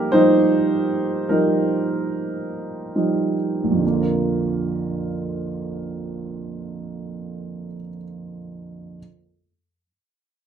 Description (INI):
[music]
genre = pop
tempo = 45-52 BPM (dotted quarters)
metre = 6/8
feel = straight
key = Bb major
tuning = A4 = 440 Hz
[part]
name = warm baby grand piano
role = accompaniment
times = 0.0-9.0 s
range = Bb1 to C5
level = -20 LUFS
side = right 2 dB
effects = none
[sound]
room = wet studio reverb, RT60 0.6 s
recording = rough home demo mix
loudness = -19 LUFS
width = side -8 dB against mid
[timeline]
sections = 0.0-3.8 A section; 3.8-6.5 B section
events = slowing down 0.0-3.8; grand piano solo 0.0-3.8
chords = 0.0 Ebadd9; 3.8 Bb